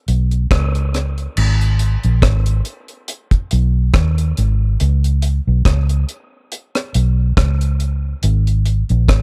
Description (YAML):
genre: dub reggae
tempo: 70 BPM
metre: 4/4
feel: swing 55% on 16ths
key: unclear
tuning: A4 = 442 Hz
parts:
  - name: vintage muted fingered electric bass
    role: bass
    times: 0.1-9.2 s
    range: G#1 to D#2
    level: -17 LUFS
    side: equal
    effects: none
  - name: deep reggae drum kit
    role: drums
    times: 0.1-9.2 s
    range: crash cymbal, hi-hat, kick drum, rim click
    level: -20 LUFS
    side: equal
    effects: none
room: little or no reverb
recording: none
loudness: -17 LUFS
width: mono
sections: 0.0-1.4 A section; 1.4-9.2 B section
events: none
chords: none